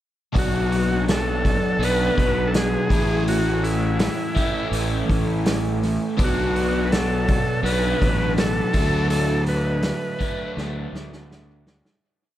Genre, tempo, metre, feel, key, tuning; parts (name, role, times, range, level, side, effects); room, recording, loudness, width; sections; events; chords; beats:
psychedelic rock; 82 BPM; 4/4; straight; B minor; A4 = 439 Hz
crunchy overdriven guitar; riff; 0.3-11.6 s; A2 to F#4; -24 LUFS; equal; phaser, dub echo
combo organ; melody; 0.4-10.5 s; E4 to B4; -25 LUFS; equal; dub echo
fuzz fingered electric bass; bass; 0.4-11.8 s; A1 to D2; -25 LUFS; equal; overdrive
vintage drum kit; drums; 0.4-12.0 s; hi-hat, kick drum, snare drum; -25 LUFS; equal; dub echo
light reverb, small room ambience; echo-heavy mix; -19 LUFS; side -13 dB against mid
0.3-12.0 verse
fade-out 9.1-12.0; drum fill 10.6-12.0
0.3 Bm7; 2.9 A; 6.2 Bm7; 8.7 D6
| 0.34 1.07 1.80 2.53 | 3.26 3.99 4.72 5.45 | 6.18 6.91 7.64 8.37 | 9.10 9.83 10.56 11.29